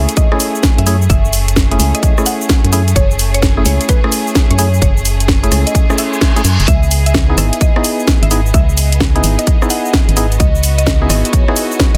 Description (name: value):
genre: UK garage, two-step garage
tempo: 129 BPM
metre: 4/4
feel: swing 65% on 16ths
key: unclear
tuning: A4 = 440 Hz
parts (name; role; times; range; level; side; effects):
- mallet-like synth pluck; melody; 0.0-12.0 s; B4 to F#5; -26 LUFS; equal; analog chorus, digital delay
- warm studio violin section; sustained chords; 0.0-12.0 s; A3 to D#5; -27 LUFS; equal; sidechain pumping
- percussive organ stab; stabs; 0.0-12.0 s; A3 to G#4; -21 LUFS; equal; chorus, digital delay
- organ-like FM bass; bass; 0.0-12.0 s; F#1 to F#2; -16 LUFS; equal; none
- house drum kit; drums; 0.1-12.0 s; cabasa, hi-hat, rim click, snare drum; -20 LUFS; equal; overdrive
- electronic kick drum; drums; 0.2-11.9 s; none; -15 LUFS; equal; overdrive
- reverse cymbal; sound effects; 5.9-6.7 s; none; -24 LUFS; equal; none
room: digital ambience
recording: dense, heavily limited modern master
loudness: -13 LUFS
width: mono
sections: 0.0-12.0 A section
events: reverse cymbal 5.9-6.7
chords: 0.0 F#m9; 6.7 C#m9